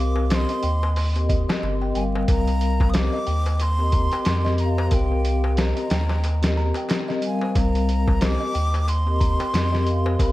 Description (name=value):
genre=trip hop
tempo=91 BPM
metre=4/4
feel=swing 58% on 16ths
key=C minor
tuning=A4 = 437 Hz
part: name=breathy concert flute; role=melody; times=0.0-10.3 s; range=G5 to Eb6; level=-29 LUFS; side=equal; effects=tape echo
part: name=vibraphone with soft mallets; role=accompaniment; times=0.0-10.3 s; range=G3 to F5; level=-26 LUFS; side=left 2 dB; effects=tremolo
part: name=warm sub bass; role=bass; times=0.0-10.3 s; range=G1 to F2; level=-22 LUFS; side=equal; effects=none
part: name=darbuka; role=percussion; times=0.2-10.3 s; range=none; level=-37 LUFS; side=left 3 dB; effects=none
part: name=music box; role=arpeggios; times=0.3-10.3 s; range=Bb4 to Bb5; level=-34 LUFS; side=right 2 dB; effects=tape echo
part: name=trip hop sampler-style drum kit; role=drums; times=0.3-10.3 s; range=hi-hat, kick drum, snare drum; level=-24 LUFS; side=equal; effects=none
room=little or no reverb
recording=dark, warm production, vinyl crackle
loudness=-19 LUFS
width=side -16 dB against mid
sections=0.0-10.3 A section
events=none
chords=0.0 Cm7